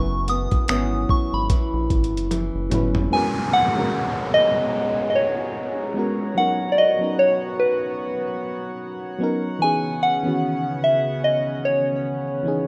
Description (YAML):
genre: contemporary R&B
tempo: 74 BPM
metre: 4/4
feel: swing 58% on 16ths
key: G# minor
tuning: A4 = 439 Hz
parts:
  - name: soft synth bell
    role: melody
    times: 0.0-12.4 s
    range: B4 to D#6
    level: -24 LUFS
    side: equal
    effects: chorus
  - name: FM electric piano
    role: accompaniment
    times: 0.0-12.7 s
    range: D#3 to B4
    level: -30 LUFS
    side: equal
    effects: none
  - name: flamenco guitar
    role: arpeggios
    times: 0.0-3.7 s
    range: F#2 to C#4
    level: -29 LUFS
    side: equal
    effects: tape echo
  - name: round analog bass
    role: bass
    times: 0.0-3.1 s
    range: F#1 to A#1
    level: -28 LUFS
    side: equal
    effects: none
  - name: dusty soul sampler-style drum kit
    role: drums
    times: 0.3-3.1 s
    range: finger snaps, hi-hat, kick drum, toms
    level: -25 LUFS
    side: equal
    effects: none
  - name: chorused pulse-width pad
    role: sustained chords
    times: 3.1-12.7 s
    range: C#3 to A#5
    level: -31 LUFS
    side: equal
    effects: none
  - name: downlifter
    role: sound effects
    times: 3.1-9.6 s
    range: none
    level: -33 LUFS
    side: equal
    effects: none
room: little or no reverb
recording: rough home demo mix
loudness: -22 LUFS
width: mono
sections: 0.0-3.1 A section; 3.1-12.7 B section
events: drum fill 2.3-3.1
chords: 0.0 F#7sus4; 3.1 G#m11; 6.4 Bmaj9; 9.6 C#m9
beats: 0.69 1.50 2.31 | 3.12 3.93 4.74 5.55 | 6.36 7.17 7.99 8.80 | 9.61 10.42 11.23 12.04